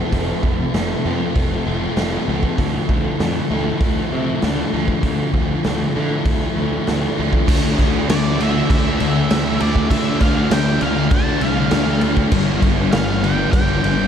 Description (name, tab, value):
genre	rock, shoegaze and dream pop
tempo	98 BPM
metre	4/4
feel	straight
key	D minor, D dorian from 7.5 s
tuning	A4 = 439 Hz
part	electric guitar through a small old amp	arpeggios	0.0-7.5 s	F3 to C4	-30 LUFS	right 3 dB	wide subtle chorus, ping-pong delay
part	overdriven electric guitar	riff	0.0-14.1 s	F2 to D4	-25 LUFS	right 10 dB	reverse reverb
part	thick fuzz guitar	riff	0.0-14.1 s	F2 to F4	-22 LUFS	left 8 dB	distortion, lush chorus
part	fuzz picked electric bass	bass	0.1-14.1 s	F1 to D3	-22 LUFS	equal	overdrive
part	raw garage drum kit	drums	0.1-14.0 s	crash cymbal, hi-hat, kick drum, snare drum	-21 LUFS	equal	none
part	crunchy overdriven guitar	riff	7.5-14.1 s	G2 to D4	-24 LUFS	right 1 dB	none
part	octave-fuzz lead guitar	melody	8.1-14.1 s	D5 to A5	-25 LUFS	right 1 dB	distortion, ping-pong delay
room	moderate huge ambient reverb, RT60 4.3 s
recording	dreamy mix soaked in reverb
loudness	-16 LUFS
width	side -8 dB against mid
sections	0.0-7.5 A section; 7.5-14.1 B section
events	none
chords	0.0 F; 2.6 Dmadd9; 12.3 G7